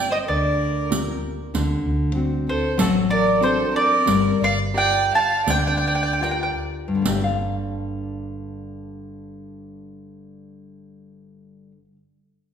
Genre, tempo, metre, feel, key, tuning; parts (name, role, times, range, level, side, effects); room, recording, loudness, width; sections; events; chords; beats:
italian folk, Italian serenade; 70-97 BPM; 4/4; straight; G minor; A4 = 439 Hz
mandolin; melody; 0.0-6.5 s; A4 to A5; -20 LUFS; right 2 dB
rich violin; second line; 0.0-6.6 s; F#4 to F5; -28 LUFS; right 1 dB
nylon-string guitar; accompaniment; 0.0-12.0 s; G2 to F5; -26 LUFS; left 3 dB
hollow-body short-scale fingered electric bass; bass; 0.3-11.9 s; G1 to D2; -27 LUFS; right 1 dB
riq; percussion; 0.9-7.5 s; -28 LUFS; right 3 dB
wet recital hall reverb, RT60 1.6 s; recorded in a church or concert hall; -19 LUFS; side -8 dB against mid
0.0-1.5 A section; 1.5-7.1 B section; 7.1-10.4 C section
slowing down 1.5-7.1
0.0 Gm7; 1.5 D7; 4.1 Gm7
0.29 0.92 | 1.54 2.16 2.79 3.42 | 4.08 4.75 5.47 6.23 | 7.05 7.90 8.73 9.56